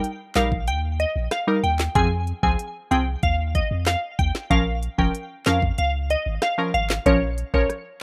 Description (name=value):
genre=dancehall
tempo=94 BPM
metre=4/4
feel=straight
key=Bb dorian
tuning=A4 = 441 Hz
part: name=glassy wavetable pluck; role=melody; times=0.0-7.8 s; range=Db5 to Ab5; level=-27 LUFS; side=equal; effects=chorus, delay
part: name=island pop drum kit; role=drums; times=0.0-7.8 s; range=handclaps, hi-hat, kick drum, rim click, snare drum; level=-28 LUFS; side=equal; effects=none
part: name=wavetable chord stab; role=accompaniment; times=0.4-7.7 s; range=F3 to Bb4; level=-26 LUFS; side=equal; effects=none
part: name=punchy sub bass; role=bass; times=0.4-7.7 s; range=F1 to F2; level=-27 LUFS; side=equal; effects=none
room=light reverb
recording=rough home demo mix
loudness=-23 LUFS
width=mono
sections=0.0-8.0 A section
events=none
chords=0.0 Eb; 2.0 Fm; 4.5 Bbm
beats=0.04 0.68 1.32 | 1.95 2.59 3.23 3.87 | 4.51 5.15 5.78 6.42 | 7.06 7.70